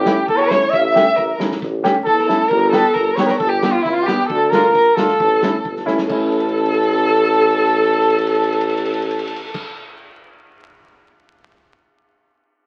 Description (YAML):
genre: klezmer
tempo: 134 BPM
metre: 4/4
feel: straight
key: A phrygian dominant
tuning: A4 = 440 Hz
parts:
  - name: mellow cornet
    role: melody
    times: 0.0-9.6 s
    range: E4 to F5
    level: -20 LUFS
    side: equal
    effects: none
  - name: warm violin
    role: second line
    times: 0.0-9.6 s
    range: E4 to E5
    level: -22 LUFS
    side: equal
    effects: none
  - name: dark upright piano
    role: accompaniment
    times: 0.0-9.6 s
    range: A3 to G4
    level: -23 LUFS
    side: equal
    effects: none
  - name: warm tuba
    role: bass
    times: 0.0-9.6 s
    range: G1 to E2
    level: -23 LUFS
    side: equal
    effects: none
  - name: natural country drum kit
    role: drums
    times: 0.1-11.1 s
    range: crash cymbal, kick drum, ride cymbal, snare drum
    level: -28 LUFS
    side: equal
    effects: none
room: wet studio reverb, RT60 0.5 s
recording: very old 78 rpm record, vinyl crackle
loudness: -16 LUFS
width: mono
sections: 0.0-6.1 A section; 6.1-9.7 B section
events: drum fill 5.9, 6.3-9.5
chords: 0.0 A; 2.5 G; 4.3 Dm; 5.2 A